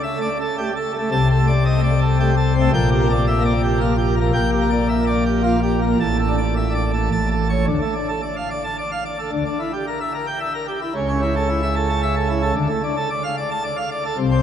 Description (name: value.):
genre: classical, organ toccata.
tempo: 111 BPM.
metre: 3/4.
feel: straight.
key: D minor.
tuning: A4 = 440 Hz.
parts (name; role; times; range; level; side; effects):
pipe organ, plenum; solo; 0.0-14.4 s; A1 to A5; -17 LUFS; equal; none.
room: wet huge ambient reverb, RT60 7.6 s.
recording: in a vast, echoing space.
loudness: -17 LUFS.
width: side -9 dB against mid.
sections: 0.0-7.7 A section; 7.7-14.4 A section.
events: none.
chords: 0.0 D5; 1.1 D5/C; 2.7 Em7b5/Bb; 6.0 D5/A; 7.1 A; 7.7 Dm; 9.3 Em7b5/D; 10.9 A/C#; 12.6 Dm.